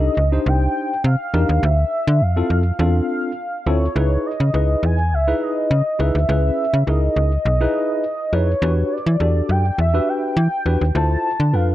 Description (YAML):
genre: early-eighties boogie funk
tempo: 103 BPM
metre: 4/4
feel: straight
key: unclear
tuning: A4 = 441 Hz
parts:
  - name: warm velvety synth lead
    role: melody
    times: 0.0-11.7 s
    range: C#5 to A5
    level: -23 LUFS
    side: equal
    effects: chorus, slapback echo
  - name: tine electric piano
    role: accompaniment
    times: 0.0-11.7 s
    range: C4 to C5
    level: -23 LUFS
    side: left 1 dB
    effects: overdrive, fast stereo tremolo
  - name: slap-like FM bass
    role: bass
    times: 0.0-11.7 s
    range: B1 to E3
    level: -17 LUFS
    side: equal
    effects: none
room: light reverb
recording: dark, warm production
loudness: -16 LUFS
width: side -14 dB against mid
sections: 0.0-4.0 A section; 4.0-11.7 B section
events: none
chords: 0.0 Cm9; 1.6 Dm9; 4.0 C#m9; 8.6 Em9; 10.9 Dm9